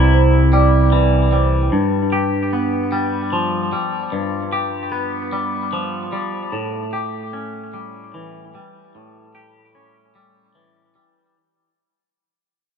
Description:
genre	rock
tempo	50 BPM (dotted quarters)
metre	6/8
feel	straight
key	unclear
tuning	A4 = 440 Hz
part	twangy electric guitar	arpeggios	0.0-11.4 s	G2 to G4	-20 LUFS	left 2 dB	phaser, tape echo
part	growling fingered electric bass	bass	0.0-1.7 s	C2	-13 LUFS	equal	overdrive
part	vibraphone with medium mallets	arpeggios	0.1-1.7 s	C5 to D5	-22 LUFS	right 11 dB	tape echo
room	light reverb, small room ambience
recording	dark, warm production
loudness	-16 LUFS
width	side -7 dB against mid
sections	0.0-11.4 A section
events	fade-out 0.0-11.4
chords	0.0 Cmaj7; 1.7 G7; 6.5 A7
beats	0.53 | 1.73 2.92 | 4.13 5.33 | 6.54 7.74 | 8.95 10.16

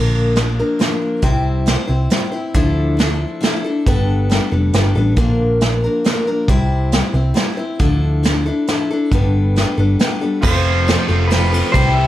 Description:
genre	folk rock and heartland rock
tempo	137 BPM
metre	3/4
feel	straight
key	C major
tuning	A4 = 439 Hz
part	picked steel-string acoustic guitar	accompaniment	0.0-12.1 s	G2 to C5	-19 LUFS	left 2 dB	none
part	hollow-body short-scale picked electric bass	bass	0.0-12.1 s	F1 to D2	-17 LUFS	equal	none
part	soft brush drum kit	drums	0.4-11.8 s	crash cymbal, hi-hat, kick drum, ride cymbal, snare drum	-18 LUFS	right 1 dB	none
part	pedal steel guitar	melody	10.4-12.1 s	B4 to E5	-21 LUFS	equal	none
part	bright concert grand piano	accompaniment	10.4-12.1 s	C4 to C5	-29 LUFS	right 4 dB	none
part	cranked stack guitar	riff	10.4-12.1 s	F2 to F4	-22 LUFS	right 1 dB	overdrive
room	light reverb, small room reverb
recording	none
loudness	-14 LUFS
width	side -13 dB against mid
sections	0.0-10.4 A section; 10.4-12.1 B section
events	none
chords	0.0 Bb; 1.2 C; 2.5 Dmadd9; 3.9 Gadd9; 5.2 Bb; 6.5 C; 7.8 Dmadd9; 9.1 Gadd9; 10.4 F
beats	0.36 0.80 | 1.24 1.67 2.11 | 2.55 2.99 3.42 | 3.86 4.30 4.74 | 5.18 5.62 6.05 | 6.49 6.93 7.37 | 7.81 8.24 8.68 | 9.12 9.56 10.00 | 10.44 10.87 11.31 | 11.75

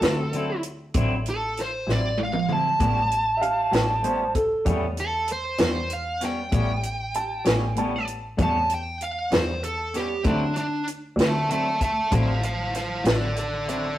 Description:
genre	slow blues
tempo	64 BPM (dotted quarters)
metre	12/8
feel	straight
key	unclear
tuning	A4 = 440 Hz
part	smooth overdriven lead guitar	melody	0.0-14.0 s	D4 to A5	-26 LUFS	right 1 dB	none
part	twangy electric guitar	accompaniment	0.0-13.9 s	A2 to E4	-30 LUFS	left 1 dB	harmonic tremolo
part	clear double bass	bass	0.0-13.9 s	A1 to E2	-28 LUFS	left 1 dB	none
part	compact cocktail drum kit	drums	0.0-13.8 s	hi-hat, kick drum, snare drum, toms	-25 LUFS	equal	none
part	dark upright piano	second line	3.4-8.2 s	A4 to A5	-27 LUFS	right 2 dB	none
room	wet stone room reverb, RT60 0.9 s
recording	rough rehearsal-room recording, warm saturation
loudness	-22 LUFS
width	side -13 dB against mid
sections	0.0-14.0 A section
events	drum fill 1.9-2.8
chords	0.0 D9; 2.8 A9; 10.2 D9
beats	0.01 0.94 1.87 | 2.80 3.73 4.66 5.59 | 6.52 7.45 8.38 9.31 | 10.25 11.18 12.12 13.05

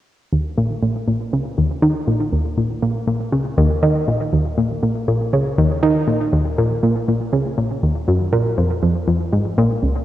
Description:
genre	ambient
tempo	120 BPM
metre	4/4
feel	straight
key	Eb minor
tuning	A4 = 438 Hz
part	analog pluck	solo	0.3-10.0 s	Db2 to Eb3	-16 LUFS	equal	chorus, analog delay
room	wet plate reverb, RT60 3.0 s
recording	worn, warbling old tape, cassette tape, warbly pitch drift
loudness	-16 LUFS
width	side -13 dB against mid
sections	0.3-10.0 A section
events	none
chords	none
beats	| 0.33 0.83 1.33 1.83 | 2.33 2.83 3.33 3.83 | 4.33 4.83 5.33 5.83 | 6.33 6.83 7.33 7.83 | 8.33 8.83 9.33 9.83

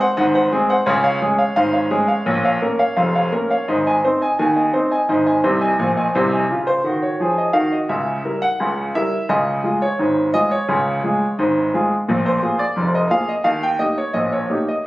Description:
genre	ragtime piano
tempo	86 BPM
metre	2/4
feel	straight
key	Db major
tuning	A4 = 439 Hz
part	clear grand piano	solo	0.0-14.9 s	F1 to Ab5	-16 LUFS	equal	none
room	light reverb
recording	recorded on a phone in the room, club reverb, compression, lossy compression artefacts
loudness	-16 LUFS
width	side -17 dB against mid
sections	0.0-6.5 A section; 6.5-14.9 B section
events	grand piano fill 5.4-6.5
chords	0.0 Ab7; 0.9 Db; 2.3 Bbm; 3.7 Ab; 6.5 Db; 7.9 Dbdim7; 9.3 Db; 12.1 Bb5; 13.5 Eb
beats	0.18 | 0.88 1.58 | 2.27 2.98 | 3.68 4.39 | 5.09 5.80 | 6.50 7.20 | 7.90 8.59 | 9.29 9.98 | 10.68 11.38 | 12.07 12.76 | 13.46 14.15 | 14.85

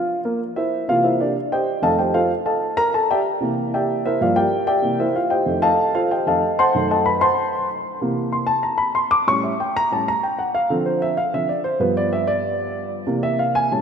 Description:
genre	jazz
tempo	190 BPM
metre	4/4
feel	straight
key	C mixolydian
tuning	A4 = 440 Hz
part	dark baby grand piano	solo	0.0-13.8 s	F2 to D6	-18 LUFS	equal	none
room	wet lush hall reverb, RT60 3.0 s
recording	rough home demo mix, nothing above 10.4 kHz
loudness	-18 LUFS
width	side -7 dB against mid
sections	0.4-13.8 A section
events	grand piano solo 0.4-13.8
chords	0.4 C9; 1.7 F9; 2.9 C9; 4.2 Gm7; 4.8 C9; 5.5 F9; 6.7 F#dim7; 8.0 C7; 9.3 A7; 10.5 Dm7; 11.8 G7; 13.1 C7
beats	0.09 | 0.41 0.73 1.04 1.36 | 1.68 1.99 2.31 2.63 | 2.94 3.26 3.58 3.90 | 4.21 4.53 4.85 5.16 | 5.48 5.80 6.11 6.43 | 6.75 7.06 7.38 7.70 | 8.01 8.33 8.65 8.96 | 9.28 9.60 9.91 10.23 | 10.54 10.86 11.18 11.49 | 11.81 12.13 12.44 12.76 | 13.08 13.39 13.71

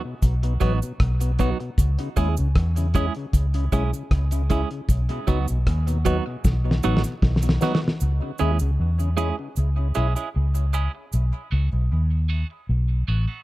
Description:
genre	dub reggae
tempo	77 BPM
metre	4/4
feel	straight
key	C# minor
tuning	A4 = 442 Hz
part	tonewheel organ	accompaniment	0.0-13.4 s	B2 to E4	-32 LUFS	left 3 dB	stopped rotary speaker, high-pass filter, dub echo
part	vintage muted fingered electric bass	bass	0.2-13.3 s	A1 to E2	-21 LUFS	equal	none
part	cloth-damped thuddy drum kit	drums	0.2-8.1 s	hi-hat, kick drum, rim click, snare drum	-22 LUFS	equal	none
part	cabasa	percussion	0.2-11.3 s	none	-40 LUFS	right 9 dB	high-pass filter on perc
part	clean electric guitar	accompaniment	0.6-13.4 s	F#3 to G#4	-30 LUFS	right 7 dB	high-pass filter, dub echo
room	small room ambience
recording	dark, warm production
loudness	-20 LUFS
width	side -17 dB against mid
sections	0.0-8.0 A section; 8.0-13.4 B section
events	drum fill 6.5-8.0; filter sweep 8.0-13.4; part muted 11.1-13.4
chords	0.0 B; 1.8 C#m; 4.9 B; 8.0 C#m; 11.1 B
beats	0.22 1.00 | 1.78 2.56 3.34 4.12 | 4.89 5.67 6.45 7.23 | 8.01 8.79 9.56 10.34 | 11.12 11.90 12.68

